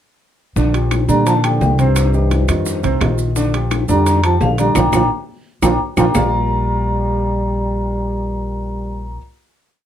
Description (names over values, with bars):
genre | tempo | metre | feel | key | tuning
Afro-Cuban jazz | 172 BPM | 4/4 | straight | Bb major | A4 = 445 Hz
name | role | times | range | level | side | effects
clear concert grand piano | accompaniment | 0.6-9.2 s | C3 to F5 | -21 LUFS | right 2 dB | none
upright bass | bass | 0.6-9.2 s | Bb1 to Bb2 | -18 LUFS | left 1 dB | none
bongos | percussion | 0.6-6.2 s | none | -26 LUFS | left 6 dB | none
maracas | percussion | 0.6-6.2 s | none | -32 LUFS | right 6 dB | none
timbales | percussion | 0.7-6.2 s | none | -24 LUFS | right 5 dB | none
claves | percussion | 0.9-6.2 s | none | -28 LUFS | left 6 dB | none
vibraphone with medium mallets | melody | 1.1-9.2 s | C5 to D6 | -21 LUFS | left 2 dB | none
breathy trombone | second line | 1.1-9.2 s | G2 to G3 | -21 LUFS | right 2 dB | none
room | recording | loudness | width
light reverb | close, detailed microphones | -14 LUFS | side -10 dB against mid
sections
0.6-6.1 A section; 6.1-8.9 final chord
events
band accent 4.8-6.1; drum fill 5.3-6.1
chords
0.6 Bb6; 2.0 Cm; 2.7 Fsus2; 3.4 Bb6